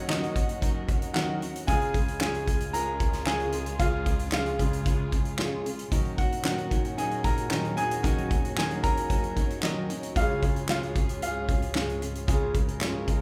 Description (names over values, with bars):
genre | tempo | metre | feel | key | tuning
piano-driven pop | 113 BPM | 4/4 | straight | unclear | A4 = 437 Hz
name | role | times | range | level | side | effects
bright grand piano | accompaniment | 0.0-13.2 s | Db3 to Bb5 | -34 LUFS | equal | none
muted studio string section | sustained chords | 0.0-13.2 s | Db2 to Gb5 | -38 LUFS | equal | none
picked steel-string acoustic guitar | riff | 0.0-13.2 s | Db3 to Bb4 | -35 LUFS | equal | none
natural country drum kit | drums | 0.1-13.2 s | handclaps, hi-hat, kick drum, snare drum | -30 LUFS | equal | none
room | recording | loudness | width
moderate large studio reverb, RT60 0.9 s | band playing live in one room | -28 LUFS | mono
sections
0.0-13.2 A section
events
grand piano solo 0.0-13.2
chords
0.0 Ebm7; 1.7 Db; 5.9 Ebm7; 10.2 Db